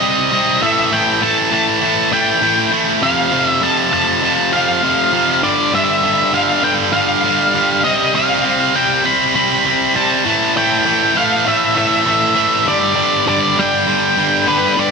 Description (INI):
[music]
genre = rock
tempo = 100 BPM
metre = 4/4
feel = straight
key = G mixolydian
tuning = A4 = 442 Hz
[part]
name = octave-fuzz lead guitar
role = melody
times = 0.0-14.9 s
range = B4 to B5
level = -16 LUFS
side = left 1 dB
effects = distortion, slapback echo
[part]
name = heavy high-gain guitar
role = riff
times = 0.0-14.9 s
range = F2 to C4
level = -15 LUFS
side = right 1 dB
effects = distortion
[sound]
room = wet lush hall reverb, RT60 2.8 s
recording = big arena sound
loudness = -12 LUFS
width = side -5 dB against mid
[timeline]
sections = 0.0-14.9 A section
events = none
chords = 0.0 Cm; 0.6 A5; 3.0 F; 5.4 G5; 7.8 C5; 10.3 A5; 12.7 G5